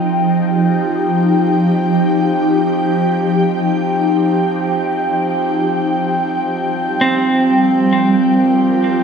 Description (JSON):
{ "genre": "ambient", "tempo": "free time", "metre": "none", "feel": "none", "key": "unclear", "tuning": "A4 = 439 Hz", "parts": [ { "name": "ethereal airy pad", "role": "sustained chords", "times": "0.0-9.0 s", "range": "F3 to G5", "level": "-15 LUFS", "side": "equal", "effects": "ensemble chorus, built-in reverb, phaser" }, { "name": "pedal harmonium", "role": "drone", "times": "0.0-9.0 s", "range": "F3 to C4", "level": "-21 LUFS", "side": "right 1 dB", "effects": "none" }, { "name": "clean electric guitar", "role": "arpeggios", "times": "7.0-9.0 s", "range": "C4", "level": "-14 LUFS", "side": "right 2 dB", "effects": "ping-pong delay" } ], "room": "wet lush hall reverb, RT60 2.7 s", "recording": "none", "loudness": "-13 LUFS", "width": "side -6 dB against mid", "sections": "0.0-9.0 A section", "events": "none", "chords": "0.0 F7sus2; 6.1 Gm7", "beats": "free time" }